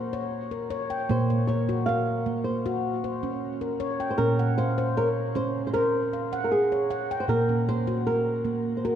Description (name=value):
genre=world meditative, meditative tuned percussion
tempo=78 BPM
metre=4/4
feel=straight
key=Bb hirajoshi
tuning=A4 = 438 Hz
part: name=flamenco guitar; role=melody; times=0.0-9.0 s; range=Ab4 to F5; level=-28 LUFS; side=right 1 dB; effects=shimmer reverb
part: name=handpan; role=arpeggios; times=0.0-9.0 s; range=Bb2 to G5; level=-26 LUFS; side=equal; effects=shimmer reverb, diffuse ambient delay
room=wet concert hall reverb, RT60 1.9 s, studio reverb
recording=dark, warm production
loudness=-24 LUFS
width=side -9 dB against mid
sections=0.0-9.0 A section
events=none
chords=0.0 Bbm; 4.2 Db/Bb; 7.3 Bbm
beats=0.32 | 1.09 1.87 2.64 3.42 | 4.19 4.96 5.74 6.51 | 7.28 8.06 8.83